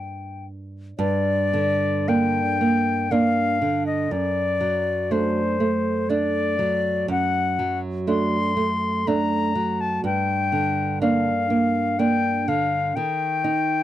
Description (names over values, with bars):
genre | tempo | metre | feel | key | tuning
romantic duo for flute and classical guitar | 54-64 BPM | 3/4 | rubato | G minor | A4 = 440 Hz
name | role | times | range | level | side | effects
concert flute | melody | 0.0-13.8 s | C5 to C6 | -23 LUFS | left 5 dB | none
nylon-string guitar | accompaniment | 0.0-13.8 s | F#2 to Eb4 | -23 LUFS | right 3 dB | none
room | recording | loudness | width
little or no reverb | dry, close 1970s-style studio recording | -20 LUFS | side -12 dB against mid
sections
1.0-13.8 A section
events
none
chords
0.0 Gm; 4.1 D/F#; 10.0 Gm; 13.0 Cm/Eb (rootless)